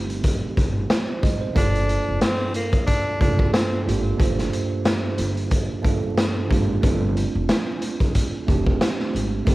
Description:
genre	hip hop, boom-bap hip-hop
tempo	91 BPM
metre	4/4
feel	swing 56% on 16ths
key	G minor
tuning	A4 = 436 Hz
part	bell-like tine electric piano	accompaniment	0.0-9.5 s	G2 to Eb5	-25 LUFS	right 3 dB	cassette tape
part	upright bass	bass	0.0-9.5 s	F1 to Ab1	-26 LUFS	equal	none
part	raw garage drum kit	drums	0.1-9.5 s	hi-hat, kick drum, snare drum	-22 LUFS	equal	cassette tape
part	breathy tenor saxophone	melody	1.6-3.8 s	Bb3 to D4	-27 LUFS	left 1 dB	cassette tape
room	little or no reverb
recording	home recording on cassette, vinyl crackle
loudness	-19 LUFS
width	side -18 dB against mid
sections	0.0-9.5 A section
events	none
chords	0.0 Am7b5/G; 1.6 Gm7; 6.8 Dm7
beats	0.24 0.90 | 1.56 2.22 2.88 3.54 | 4.20 4.86 5.51 6.17 | 6.83 7.49 8.15 8.81 | 9.47

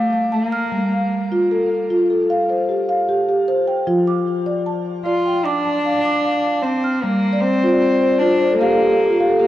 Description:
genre	world meditative, meditative tuned percussion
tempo	76 BPM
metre	4/4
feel	straight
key	unclear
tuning	A4 = 442 Hz
part	warm cello	melody	0.0-9.5 s	A3 to F4	-20 LUFS	equal	shimmer reverb, ping-pong delay
part	marimba with soft mallets	arpeggios	0.0-9.5 s	F3 to F6	-17 LUFS	equal	shimmer reverb, ping-pong delay
room	wet scoring stage reverb, RT60 2.1 s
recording	worn, warbling old tape, cassette tape, warbly pitch drift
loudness	-16 LUFS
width	side -13 dB against mid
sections	0.0-9.5 A section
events	marimba fill 7.3-9.5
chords	0.0 F; 0.7 G9sus4; 3.9 F; 7.0 Gm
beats	| 0.72 1.51 2.30 3.09 | 3.88 4.67 5.46 6.24 | 7.03 7.82 8.61 9.39

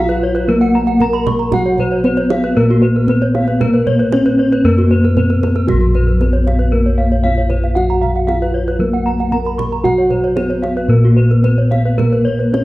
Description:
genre	Balinese gamelan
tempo	115 BPM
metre	4/4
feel	straight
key	Bb pelog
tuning	A4 = 440 Hz
part	gamelan-type bronze metallophone	melody	0.0-12.6 s	Gb3-20c to Bb4	-17 LUFS	equal	none
part	gamelan-type bronze metallophone	accompaniment	0.0-12.6 s	Gb3-20c to Bb3	-23 LUFS	left 2 dB	none
part	gamelan-type bronze metallophone	arpeggios	0.0-12.6 s	Gb4-20c to Db6-30c	-21 LUFS	left 2 dB	none
part	gamelan-type bossed gongs	bass	0.0-12.6 s	Bb1 to Bb4	-15 LUFS	equal	none
part	gamelan-type bronze metallophone	arpeggios	0.1-12.5 s	Gb4-20c to Cb6+20c	-23 LUFS	right 4 dB	none
part	kendang	percussion	0.1-12.6 s	none	-23 LUFS	right 3 dB	none
room	moderate recital hall reverb, RT60 1.7 s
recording	worn, warbling old tape, cassette tape, warbly pitch drift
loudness	-12 LUFS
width	side -18 dB against mid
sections	0.0-12.6 A section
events	none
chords	none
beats	0.48 1.00 | 1.52 2.04 2.56 3.08 | 3.60 4.12 4.64 5.16 | 5.68 6.20 6.72 7.24 | 7.76 8.28 8.80 9.32 | 9.85 10.37 10.90 11.44 | 11.98 12.54

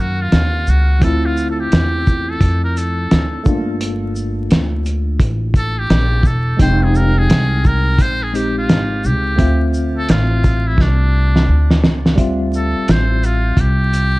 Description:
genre	hip hop, jazz-hop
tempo	86 BPM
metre	4/4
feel	swing 63% on 16ths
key	D minor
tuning	A4 = 441 Hz
part	trumpet with metal mute	melody	0.0-14.2 s	D4 to C5	-22 LUFS	equal	plate reverb, tape echo
part	tine electric piano	accompaniment	0.0-14.2 s	Eb3 to G5	-22 LUFS	left 1 dB	overdrive, fast stereo tremolo, plate reverb
part	upright bass	bass	0.0-14.2 s	E1 to Gb2	-16 LUFS	equal	none
part	cloth-damped thuddy drum kit	drums	0.3-14.1 s	hi-hat, kick drum, shaker, snare drum	-15 LUFS	equal	none
room	light reverb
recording	dark, warm production, vinyl crackle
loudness	-13 LUFS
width	side -20 dB against mid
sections	0.0-12.2 A section; 12.2-14.2 B section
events	drum fill 10.8-12.2; muted trumpet solo 12.2-14.2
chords	0.0 Ebm9; 1.0 Dm9; 3.5 Gm9; 6.6 Fm9; 9.4 Dm9; 12.2 Dm11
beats	0.32 | 1.02 1.72 2.41 3.11 | 3.81 4.51 5.21 5.90 | 6.60 7.30 8.00 8.69 | 9.39 10.09 10.79 11.48 | 12.18 12.88 13.58

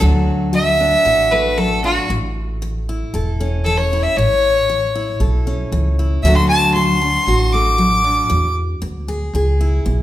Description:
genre	honky-tonk and classic country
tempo	116 BPM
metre	4/4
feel	straight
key	A major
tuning	A4 = 437 Hz
part	picked steel-string acoustic guitar	accompaniment	0.0-10.0 s	A2 to A4	-21 LUFS	left 1 dB	none
part	upright bass	bass	0.0-10.0 s	E1 to E2	-18 LUFS	equal	none
part	clear fiddle	melody	0.5-8.5 s	F#4 to D6	-16 LUFS	equal	none
room	wet recital hall reverb, RT60 1.4 s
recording	recorded in a church or concert hall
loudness	-14 LUFS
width	side -14 dB against mid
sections	0.0-10.0 A section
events	fiddle solo 0.0-10.0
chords	0.0 D; 2.1 A; 6.2 D; 8.3 E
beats	| 0.01 0.53 1.05 1.57 | 2.09 2.61 3.13 3.65 | 4.17 4.68 5.20 5.72 | 6.24 6.76 7.28 7.79 | 8.31 8.83 9.35 9.87

